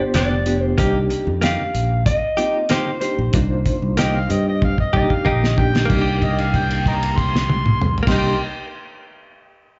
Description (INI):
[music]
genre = straight-eighth soul blues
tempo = 94 BPM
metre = 4/4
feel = straight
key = C minor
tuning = A4 = 440 Hz
[part]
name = electric guitar through a small old amp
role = melody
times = 0.0-5.2 s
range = C5 to F5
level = -27 LUFS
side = equal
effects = slapback echo
[part]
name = reed electric piano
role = accompaniment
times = 0.0-8.4 s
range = Bb3 to G4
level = -27 LUFS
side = equal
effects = fast tremolo
[part]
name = direct-recorded clean electric guitar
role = stabs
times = 0.0-8.4 s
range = F3 to G4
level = -28 LUFS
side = equal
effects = slapback echo, analog delay
[part]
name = fingered electric bass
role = bass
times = 0.1-8.3 s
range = F1 to G2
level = -23 LUFS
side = equal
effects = none
[part]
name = cloth-damped thuddy drum kit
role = drums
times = 0.1-8.2 s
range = crash cymbal, hi-hat, kick drum, snare drum, toms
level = -24 LUFS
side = equal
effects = none
[part]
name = overdriven harmonica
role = second line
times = 4.0-8.4 s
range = Eb5 to C6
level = -27 LUFS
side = equal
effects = slapback echo
[sound]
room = small room ambience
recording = live gig heard through the venue's PA, club ambience, nothing above 7.8 kHz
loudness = -19 LUFS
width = mono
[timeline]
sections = 0.0-5.9 A section; 5.9-8.5 B section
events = drum fill 4.6-5.9; held note 5.9-8.1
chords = 0.0 G7; 0.8 Cm7